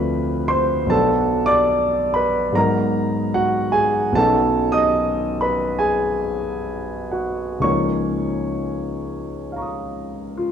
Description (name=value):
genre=classical, impressionist solo piano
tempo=59-78 BPM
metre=4/4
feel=rubato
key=unclear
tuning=A4 = 441 Hz
part: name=warm concert grand piano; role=solo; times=0.0-10.5 s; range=Cb2 to Eb6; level=-18 LUFS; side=equal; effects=none
room=moderate concert hall reverb, RT60 1.9 s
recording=dark, warm production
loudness=-18 LUFS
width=side -8 dB against mid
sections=0.0-10.5 A section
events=none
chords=0.0 Dm7; 0.9 Cbm7; 2.5 Abm7; 4.2 Cb9; 7.6 Db69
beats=0.12 | 0.91 1.74 2.54 3.34 | 4.15 5.00 5.81 6.66 | 7.64 8.59 9.50 10.39